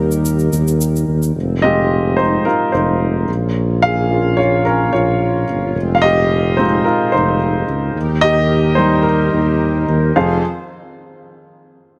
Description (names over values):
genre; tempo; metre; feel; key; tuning
piano-driven pop; 109 BPM; 4/4; straight; F minor; A4 = 440 Hz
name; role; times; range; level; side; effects
warm upright piano; accompaniment; 0.0-10.4 s; F2 to F5; -18 LUFS; equal; none
chorused pulse-width pad; sustained chords; 0.0-10.4 s; Eb3 to C5; -26 LUFS; equal; none
warm tuba; bass; 0.0-10.4 s; F1 to Eb2; -20 LUFS; equal; none
egg shaker; percussion; 0.1-1.3 s; none; -30 LUFS; equal; none
room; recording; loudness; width
light reverb; none; -16 LUFS; mono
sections
0.0-1.4 A section; 1.4-10.2 B section; 10.2-12.0 C section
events
upright piano solo 1.4-10.2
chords
0.0 Eb; 1.4 Fm; 3.3 Bbm; 5.8 Fm; 8.0 Eb; 10.2 Fm